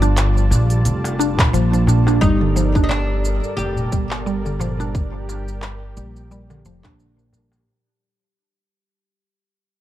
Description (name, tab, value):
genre	organic downtempo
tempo	88 BPM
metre	4/4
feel	swing 56% on 16ths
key	G minor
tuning	A4 = 440 Hz
part	oud	melody	0.0-6.9 s	D4 to G4	-25 LUFS	equal	digital delay
part	warm analog pad	sustained chords	0.0-7.6 s	G3 to A5	-30 LUFS	equal	chorus, tremolo, sidechain pumping
part	mallet-like synth pluck	arpeggios	0.0-7.5 s	D3 to D4	-23 LUFS	right 1 dB	wide subtle chorus, digital delay
part	upright bass	bass	0.0-7.6 s	F1 to Bb1	-20 LUFS	equal	sidechain pumping
part	organic electronic drum kit	drums	0.0-7.6 s	handclaps, hi-hat, shaker	-25 LUFS	equal	none
part	darbuka	percussion	0.5-7.6 s	none	-23 LUFS	equal	none
part	electronic kick drum	drums	1.4-7.0 s	none	-18 LUFS	equal	none
part	bronze singing bowl	texture	2.2-7.7 s	G3 to G4	-34 LUFS	equal	none
room	light reverb, small room ambience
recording	dark, warm production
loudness	-16 LUFS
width	side -13 dB against mid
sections	0.0-2.2 A section; 2.2-7.7 B section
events	fade-out 2.2-7.7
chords	0.0 Gm7